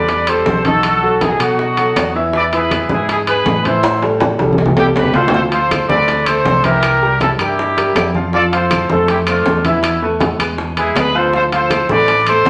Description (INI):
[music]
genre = latin, salsa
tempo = 160 BPM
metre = 4/4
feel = straight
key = A minor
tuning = A4 = 440 Hz
[part]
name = bright trumpet section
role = melody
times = 0.0-12.5 s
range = B3 to D5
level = -18 LUFS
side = equal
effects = none
[part]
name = bright upright piano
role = accompaniment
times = 0.0-12.5 s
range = D#3 to F5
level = -21 LUFS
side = equal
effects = none
[part]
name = fingered electric bass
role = bass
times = 0.0-12.5 s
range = A1 to B2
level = -25 LUFS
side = equal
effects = none
[part]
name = bongos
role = percussion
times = 0.1-12.5 s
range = none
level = -28 LUFS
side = equal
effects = none
[part]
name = congas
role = percussion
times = 0.1-12.5 s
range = none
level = -23 LUFS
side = equal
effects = none
[part]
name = timbales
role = percussion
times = 0.1-12.5 s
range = none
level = -23 LUFS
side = equal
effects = none
[part]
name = claves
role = percussion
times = 5.7-12.5 s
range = none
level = -31 LUFS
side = equal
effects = none
[sound]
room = wet large studio reverb, RT60 1.0 s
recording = none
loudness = -14 LUFS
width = mono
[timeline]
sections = 0.0-12.5 A section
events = drum fill 3.8-5.3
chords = 0.0 Am7; 0.8 B7; 2.3 E; 3.8 Am7; 5.3 Dm7; 6.8 C7; 8.3 Fmaj7; 9.8 Esus4; 10.6 E7; 11.3 Dm7